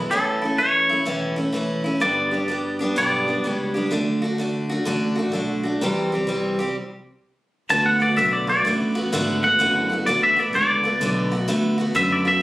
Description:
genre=honky-tonk and classic country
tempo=127 BPM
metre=4/4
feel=swing 65% on 8ths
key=D lydian from 7.7 s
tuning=A4 = 439 Hz
part: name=picked steel-string acoustic guitar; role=accompaniment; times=0.0-12.4 s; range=G2 to G4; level=-23 LUFS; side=equal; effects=none
part: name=upright bass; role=bass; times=0.0-12.4 s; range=E1 to F#2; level=-27 LUFS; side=right 1 dB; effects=none
part: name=twangy electric guitar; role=melody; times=0.1-3.7, 7.7-12.4 s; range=A4 to A5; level=-19 LUFS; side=equal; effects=tape echo
room=moderate studio reverb, RT60 0.8 s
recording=recorded on a phone in the room, studio reverb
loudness=-19 LUFS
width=side -17 dB against mid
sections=0.1-7.7 A section; 7.7-12.4 B section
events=stop 6.8-7.7; clean electric guitar solo 7.7-12.4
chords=0.1 A; 2.0 G; 3.9 D; 5.8 C; 6.8 N.C.; 7.7 D6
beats=| 0.12 0.59 1.07 1.54 | 2.02 2.49 2.97 3.44 | 3.92 4.39 4.87 5.34 | 5.81 6.29 6.76 7.23 | 7.71 8.18 8.65 9.12 | 9.60 10.07 10.54 11.01 | 11.48 11.95

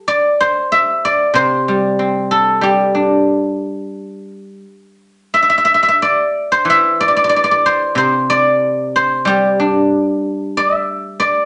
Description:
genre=chinese traditional, Chinese solo plucked strings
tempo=92 BPM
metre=4/4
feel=uneven beats, rubato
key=G zhi mode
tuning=A4 = 440 Hz
part: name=guzheng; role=solo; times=0.0-11.5 s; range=C3 to E5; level=-15 LUFS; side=equal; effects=none
room=moderate studio reverb, RT60 0.7 s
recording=nothing above 10.9 kHz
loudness=-14 LUFS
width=mono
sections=0.0-5.3 A section; 5.3-11.5 B section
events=none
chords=none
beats=| 0.08 0.73 1.37 2.00 | 2.64 3.28 3.95 4.64 | 5.32 5.99 6.67 7.33 | 7.98 8.62 9.27 9.91 | 10.55 11.18

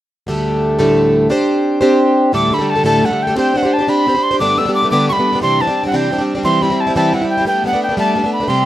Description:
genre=celtic folk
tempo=117 BPM (dotted quarters)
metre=6/8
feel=straight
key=unclear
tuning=A4 = 440 Hz
part: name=picked plugged-in twelve-string acoustic guitar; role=accompaniment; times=0.3-8.7 s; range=D2 to C5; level=-14 LUFS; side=equal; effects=plate reverb
part: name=tin whistle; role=melody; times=2.3-8.7 s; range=F#5 to E6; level=-16 LUFS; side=equal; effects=plate reverb
room=moderate small room reverb, RT60 0.5 s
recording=rough home demo mix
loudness=-12 LUFS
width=side -13 dB against mid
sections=0.3-2.3 A section; 2.3-8.7 B section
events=none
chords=0.3 Dsus4; 1.3 Csus2; 2.3 Dsus4; 3.4 Csus2; 4.4 Gadd9; 5.4 Cadd9; 6.4 C; 7.5 Gadd9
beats=| 0.27 0.79 | 1.30 1.82 | 2.33 2.85 | 3.36 3.87 | 4.38 4.90 | 5.41 5.92 | 6.43 6.95 | 7.46 7.97 | 8.48

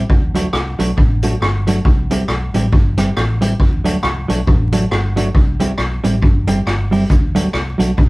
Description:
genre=ska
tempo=137 BPM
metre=4/4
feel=swing 58% on 8ths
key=D mixolydian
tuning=A4 = 440 Hz
part: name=clean electric guitar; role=accompaniment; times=0.0-7.9 s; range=F#3 to G4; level=-18 LUFS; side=right 1 dB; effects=tape echo
part: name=vintage muted fingered electric bass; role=bass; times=0.0-8.1 s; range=G1 to D2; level=-19 LUFS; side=equal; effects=none
part: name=street-band drum kit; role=drums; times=0.1-8.1 s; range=hi-hat, kick drum, rim click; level=-16 LUFS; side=equal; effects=none
room=moderate studio reverb, RT60 0.5 s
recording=band playing live in one room, vinyl crackle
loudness=-13 LUFS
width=side -22 dB against mid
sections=0.0-8.1 A section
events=none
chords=0.1 D; 1.8 C; 3.6 D; 5.3 C; 7.1 D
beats=| 0.10 0.54 0.97 1.41 | 1.85 2.28 2.72 3.16 | 3.60 4.04 4.47 4.91 | 5.35 5.79 6.22 6.66 | 7.10 7.54 7.98

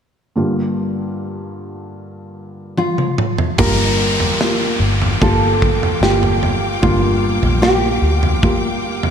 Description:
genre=pop ballad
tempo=74 BPM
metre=4/4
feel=straight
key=G minor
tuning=A4 = 440 Hz
part: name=felt-muted upright piano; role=accompaniment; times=0.4-9.1 s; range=G2 to G4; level=-21 LUFS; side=equal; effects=slapback echo
part: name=nylon-string guitar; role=melody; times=2.8-9.1 s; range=F4 to Bb4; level=-20 LUFS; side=right 1 dB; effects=slapback echo, tape echo
part: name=modern studio drum kit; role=drums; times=2.8-9.1 s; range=crash cymbal, kick drum, snare drum, toms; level=-19 LUFS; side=equal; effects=none
part: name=warm symphonic string section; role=sustained chords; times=3.6-9.1 s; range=Bb3 to D6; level=-26 LUFS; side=left 2 dB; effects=none
part: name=vintage muted fingered electric bass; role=bass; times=3.6-9.1 s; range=G1 to D2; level=-19 LUFS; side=equal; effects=none
part: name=downlifter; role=sound effects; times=3.6-9.1 s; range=none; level=-25 LUFS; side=equal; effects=none
room=moderate lush hall reverb, RT60 3.1 s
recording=big arena sound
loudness=-14 LUFS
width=side -8 dB against mid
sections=0.4-3.6 A section; 3.6-9.1 B section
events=drum fill 2.8-3.6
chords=0.4 Gm7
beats=| 0.36 1.17 1.97 2.78 | 3.59 4.41 5.22 6.03 | 6.83 7.63 8.43

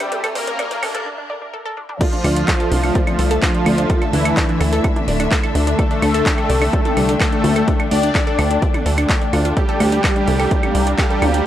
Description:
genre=melodic techno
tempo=127 BPM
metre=4/4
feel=straight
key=D minor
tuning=A4 = 441 Hz
part: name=analog synth brass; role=melody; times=0.0-11.5 s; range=E4 to D5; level=-25 LUFS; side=right 1 dB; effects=chorus, sidechain pumping, tape echo
part: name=soft supersaw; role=second line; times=0.0-11.5 s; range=E3 to D4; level=-24 LUFS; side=equal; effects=cassette tape, sidechain pumping, tape echo
part: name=rich studio string section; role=sustained chords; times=0.0-11.5 s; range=D3 to E5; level=-25 LUFS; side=left 1 dB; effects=sidechain pumping
part: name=wide unison pluck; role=arpeggios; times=0.0-11.4 s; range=D4 to D5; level=-25 LUFS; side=right 1 dB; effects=sidechain pumping, tape echo
part: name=plucky analog bass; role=bass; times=0.0-11.4 s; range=D1 to D2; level=-18 LUFS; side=equal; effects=sidechain pumping, high-pass filter
part: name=bowed-like drone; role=drone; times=3.4-11.5 s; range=D3 to A3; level=-33 LUFS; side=equal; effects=none
part: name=techno drum kit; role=drums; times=0.0-11.4 s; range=claves, crash cymbal, handclaps, hi-hat, toms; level=-24 LUFS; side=equal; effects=high-pass filter on hats, studio reverb, high-pass filter on toms, high-pass filter on perc, high-pass filter on cymbals, high-pass filter on snare
part: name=riser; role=sound effects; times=0.0-1.1 s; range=none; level=-32 LUFS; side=right 1 dB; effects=none
part: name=airy breathy pad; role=texture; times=0.0-11.5 s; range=A3 to Bb5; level=-28 LUFS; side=left 4 dB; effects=chorus, phaser, sidechain pumping
part: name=electronic kick drum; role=drums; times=2.0-11.1 s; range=none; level=-19 LUFS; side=equal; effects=studio reverb
room=little or no reverb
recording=dry, gritty hardware recording, transformer saturation, high-pass filter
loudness=-15 LUFS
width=side -12 dB against mid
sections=0.0-2.0 A section; 2.0-11.5 B section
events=build-up 0.0-2.0; drum fill 0.0-1.1, 1.8; riser 0.0-1.1; filter sweep 0.0-2.0; break 1.1-2.0; drop 2.0-11.5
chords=0.0 Gm/D; 2.0 Dmadd9; 9.6 Gm7/D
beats=| 0.12 0.59 1.06 1.54 | 2.01 2.48 2.95 3.43 | 3.90 4.37 4.84 5.32 | 5.79 6.26 6.73 7.21 | 7.68 8.15 8.62 9.10 | 9.57 10.04 10.51 10.98 | 11.46

